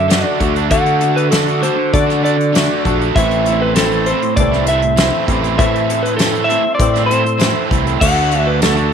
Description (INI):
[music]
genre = folk rock and heartland rock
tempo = 99 BPM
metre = 4/4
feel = straight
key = A dorian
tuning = A4 = 440 Hz
[part]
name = electric slide guitar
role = melody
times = 0.0-8.9 s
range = A4 to F#5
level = -18 LUFS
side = equal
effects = none
[part]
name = picked swing-style acoustic guitar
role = accompaniment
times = 0.0-8.9 s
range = A2 to A4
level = -21 LUFS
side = left 13 dB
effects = none
[part]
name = tonewheel organ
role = sustained chords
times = 0.0-8.9 s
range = A4 to D6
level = -29 LUFS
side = equal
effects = chorus vibrato, slow rotary speaker
[part]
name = crunchy overdriven guitar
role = riff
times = 0.0-8.9 s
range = A2 to F#4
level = -19 LUFS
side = right 14 dB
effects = none
[part]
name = picked electric bass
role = bass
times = 0.0-8.9 s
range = A1 to D3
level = -19 LUFS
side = equal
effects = none
[part]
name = soft brush drum kit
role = drums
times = 0.1-8.9 s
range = crash cymbal, hi-hat, kick drum, snare drum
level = -18 LUFS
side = left 1 dB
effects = none
[part]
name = tambourine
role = percussion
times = 0.1-8.8 s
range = none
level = -30 LUFS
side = right 14 dB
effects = none
[sound]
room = light reverb, studio reverb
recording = 1960s-style stereo with parts hard left and right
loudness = -12 LUFS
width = side -7 dB against mid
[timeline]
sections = 0.0-8.9 A section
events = none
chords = 0.0 D; 3.2 Am; 8.0 D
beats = 0.11 | 0.72 1.33 1.94 2.54 | 3.15 3.76 4.37 4.98 | 5.58 6.19 6.80 7.41 | 8.02 8.63